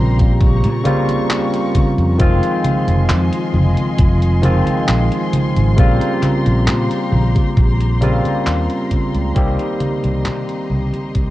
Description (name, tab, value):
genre	vaporwave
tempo	67 BPM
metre	4/4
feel	straight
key	Bb dorian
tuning	A4 = 441 Hz
part	barky tine electric piano	accompaniment	0.0-11.3 s	Db3 to G4	-18 LUFS	equal	wide subtle chorus, tape echo
part	dark studio string section	sustained chords	0.0-11.3 s	F4 to Db6	-27 LUFS	left 1 dB	none
part	fingered electric bass	bass	0.0-11.3 s	F1 to C3	-16 LUFS	equal	tube saturation
part	detuned 8-bit digital drum machine	drums	0.2-11.3 s	congas, handclaps, hi-hat	-21 LUFS	equal	none
part	electronic kick drum	drums	0.2-11.3 s	none	-15 LUFS	equal	none
room	digital ambience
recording	cassette tape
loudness	-13 LUFS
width	side -16 dB against mid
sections	0.0-11.3 A section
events	fade-out 7.0-11.3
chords	0.0 Bbm69; 2.2 Fm7; 5.8 Bbm69; 9.4 Cm7